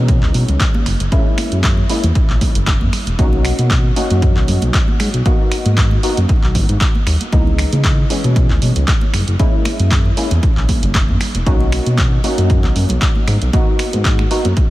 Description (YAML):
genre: deep house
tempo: 116 BPM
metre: 4/4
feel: swing 54% on 16ths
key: unclear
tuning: A4 = 440 Hz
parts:
  - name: percussive organ stab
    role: stabs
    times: 0.0-14.5 s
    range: E3 to F#4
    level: -22 LUFS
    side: left 1 dB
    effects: ensemble chorus, sidechain pumping, diffuse ambient delay
  - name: smooth synth bass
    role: bass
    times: 0.0-14.5 s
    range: E1 to C#3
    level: -16 LUFS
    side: equal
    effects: sidechain pumping
  - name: electronic kick drum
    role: drums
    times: 0.1-14.7 s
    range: none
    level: -15 LUFS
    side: equal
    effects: none
  - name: punchy analog drum machine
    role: drums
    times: 0.1-14.7 s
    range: finger snaps, handclaps, hi-hat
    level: -23 LUFS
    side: equal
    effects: none
  - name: congas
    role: percussion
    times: 0.1-14.7 s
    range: none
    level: -26 LUFS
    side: right 2 dB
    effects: sidechain pumping on perc
room: light reverb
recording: vinyl crackle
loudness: -12 LUFS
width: side -17 dB against mid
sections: 0.0-14.7 A section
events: none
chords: 0.0 C#m7; 0.9 F#9; 3.2 Bmaj9; 5.3 G#m7; 7.3 C#m9; 9.1 F#9; 11.5 Bmaj9; 13.5 G#m7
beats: 0.08 0.60 | 1.12 1.64 2.15 2.67 | 3.19 3.71 4.22 4.74 | 5.26 5.77 6.29 6.81 | 7.33 7.84 8.36 8.88 | 9.39 9.91 10.43 10.95 | 11.46 11.98 12.50 13.02 | 13.53 14.05 14.57